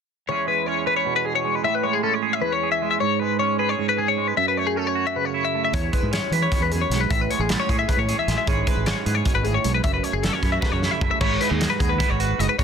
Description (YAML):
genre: math rock and midwest emo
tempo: 308 BPM (eighths)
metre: 7/8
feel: straight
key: E major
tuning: A4 = 441 Hz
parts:
  - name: twangy electric guitar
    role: accompaniment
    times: 0.3-12.6 s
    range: E2 to B4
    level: -25 LUFS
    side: right 14 dB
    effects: none
  - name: twelve-string electric guitar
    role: arpeggios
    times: 0.3-12.6 s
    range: G#4 to E5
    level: -23 LUFS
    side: left 9 dB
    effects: harmonic tremolo
  - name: growling fingered electric bass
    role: bass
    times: 5.7-12.6 s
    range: F#1 to E3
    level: -25 LUFS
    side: equal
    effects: overdrive
  - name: loose indie drum kit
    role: drums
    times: 5.7-12.6 s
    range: crash cymbal, hi-hat, kick drum, snare drum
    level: -24 LUFS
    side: equal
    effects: none
room: light reverb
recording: dense, heavily limited modern master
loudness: -20 LUFS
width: side -7 dB against mid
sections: 0.3-11.2 A section; 11.2-12.6 B section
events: drum fill 10.6-11.2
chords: 0.3 E6; 1.6 Amaj7; 3.0 G#madd11; 4.4 F#m7; 5.7 E6; 7.1 Amaj7; 8.5 E6/G#; 9.8 F#m7; 11.2 G#m7